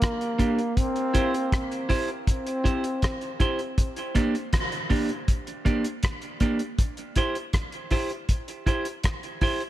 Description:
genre	dub reggae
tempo	80 BPM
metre	4/4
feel	straight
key	unclear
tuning	A4 = 442 Hz
part	breathy trombone	melody	0.0-3.4 s	Bb3 to C4	-29 LUFS	equal	dub echo
part	cloth-damped thuddy drum kit	drums	0.0-9.7 s	hi-hat, kick drum, rim click	-25 LUFS	equal	none
part	electric guitar at the edge of break-up	accompaniment	0.4-9.6 s	Bb3 to C5	-29 LUFS	right 2 dB	dub echo
room	light reverb, small room ambience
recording	none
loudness	-24 LUFS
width	side -14 dB against mid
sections	0.0-9.7 A section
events	none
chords	0.0 Gm; 0.8 C; 3.8 Gm; 6.8 C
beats	0.02 | 0.78 1.53 2.28 3.03 | 3.78 4.53 5.28 6.03 | 6.79 7.54 8.29 9.04

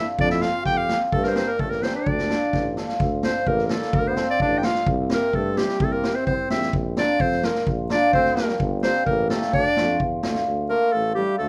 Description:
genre	klezmer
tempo	128 BPM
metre	2/4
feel	straight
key	D minor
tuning	A4 = 440 Hz
part	clear clarinet	melody	0.0-11.5 s	G4 to G5	-26 LUFS	equal	none
part	brilliant trombone	second line	0.0-11.5 s	G3 to G4	-32 LUFS	equal	none
part	hammered dulcimer	accompaniment	0.0-11.3 s	A3 to Bb4	-29 LUFS	equal	none
part	warm tuba	bass	0.2-11.5 s	G1 to G2	-30 LUFS	equal	none
part	street-band drum kit	drums	0.2-10.5 s	kick drum, snare drum	-29 LUFS	equal	none
room	wet small room ambience, RT60 0.5 s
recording	none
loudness	-22 LUFS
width	mono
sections	0.0-3.0 A section; 3.0-10.5 B section; 10.5-11.5 B section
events	drum fill 2.5-3.0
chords	0.2 F; 1.1 Gm; 2.1 Dm; 4.9 C; 6.7 Bb; 8.6 Gm; 9.5 Dm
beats	| 0.18 0.65 | 1.12 1.59 | 2.06 2.53 | 3.00 3.46 | 3.93 4.40 | 4.87 5.33 | 5.80 6.27 | 6.73 7.20 | 7.67 8.13 | 8.60 9.07 | 9.53 10.00 | 10.47 10.93 | 11.40

